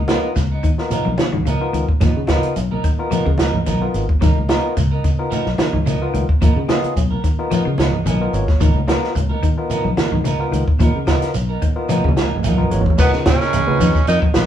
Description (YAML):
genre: afrobeat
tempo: 109 BPM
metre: 4/4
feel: swing 54% on 16ths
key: Db mixolydian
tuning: A4 = 439 Hz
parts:
  - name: clean electric guitar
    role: arpeggios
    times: 0.0-14.5 s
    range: Db3 to F3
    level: -24 LUFS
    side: left 4 dB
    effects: phaser
  - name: fingered electric bass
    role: bass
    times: 0.0-14.5 s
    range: Ab1 to Db3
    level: -22 LUFS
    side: equal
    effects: none
  - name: barky tine electric piano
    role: accompaniment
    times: 0.1-14.5 s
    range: Cb4 to Ab5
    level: -23 LUFS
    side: left 2 dB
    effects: overdrive
  - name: clean electric guitar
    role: stabs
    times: 0.1-14.2 s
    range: F3 to Bb4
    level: -25 LUFS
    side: right 4 dB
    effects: none
  - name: compact cocktail drum kit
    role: drums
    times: 0.1-14.5 s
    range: crash cymbal, hi-hat, kick drum, snare drum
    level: -18 LUFS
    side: equal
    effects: none
  - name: congas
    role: percussion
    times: 0.1-14.2 s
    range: none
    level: -23 LUFS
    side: right 2 dB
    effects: none
  - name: shekere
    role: percussion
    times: 0.1-14.5 s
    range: none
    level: -28 LUFS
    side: right 3 dB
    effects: none
  - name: raspy tenor saxophone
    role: melody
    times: 13.0-14.5 s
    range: Cb4 to Eb4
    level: -19 LUFS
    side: right 2 dB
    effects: none
  - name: clear cello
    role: second line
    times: 13.0-14.5 s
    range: Cb3 to Eb3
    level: -25 LUFS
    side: right 3 dB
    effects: none
room: wet studio ambience, RT60 0.5 s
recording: band playing live in one room, small room ambience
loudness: -15 LUFS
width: side -10 dB against mid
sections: 0.0-13.0 A section; 13.0-14.5 B section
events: tine electric piano fill 7.8-8.6, 11.9-13.0; drum fill 11.9-13.0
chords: 0.0 Db13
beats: 0.37 0.92 1.47 | 2.02 2.57 3.12 3.67 | 4.21 4.76 5.31 5.86 | 6.41 6.96 7.51 8.06 | 8.61 9.15 9.70 10.25 | 10.80 11.35 11.89 12.44 | 12.98 13.53 14.07